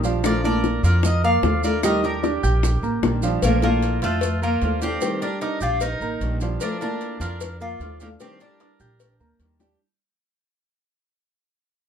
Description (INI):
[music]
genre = latin, Cuban son and guajira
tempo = 150 BPM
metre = 4/4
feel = straight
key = Bb major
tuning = A4 = 440 Hz
[part]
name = flamenco guitar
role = accompaniment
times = 0.0-9.8 s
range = Eb3 to G4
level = -27 LUFS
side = left 3 dB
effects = none
[part]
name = clear grand piano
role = arpeggios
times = 0.0-9.8 s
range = F3 to G6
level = -28 LUFS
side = right 4 dB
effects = none
[part]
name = upright bass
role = bass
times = 0.0-9.7 s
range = A1 to F2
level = -23 LUFS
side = equal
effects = none
[part]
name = bongos and cowbell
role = percussion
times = 0.0-9.8 s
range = none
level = -27 LUFS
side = left 7 dB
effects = none
[part]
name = maracas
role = percussion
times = 0.0-9.8 s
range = none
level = -37 LUFS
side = right 6 dB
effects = none
[part]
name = clear trumpet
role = second line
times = 0.2-9.6 s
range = F4 to D5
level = -32 LUFS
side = right 5 dB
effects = none
[part]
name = Cuban tres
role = melody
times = 0.3-9.6 s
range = A3 to F5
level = -26 LUFS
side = left 1 dB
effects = none
[sound]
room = moderate studio ambience, RT60 0.5 s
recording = dark, warm production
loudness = -19 LUFS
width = side -8 dB against mid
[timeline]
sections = 0.0-3.4 A section; 3.4-9.8 B section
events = fade-out 3.4-9.8; drum fill 9.6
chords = 0.2 Bbmaj7; 1.8 Ebmaj9; 3.4 Bbmaj7; 5.0 Ebmaj9; 6.6 Bbmaj7; 8.2 Ebmaj7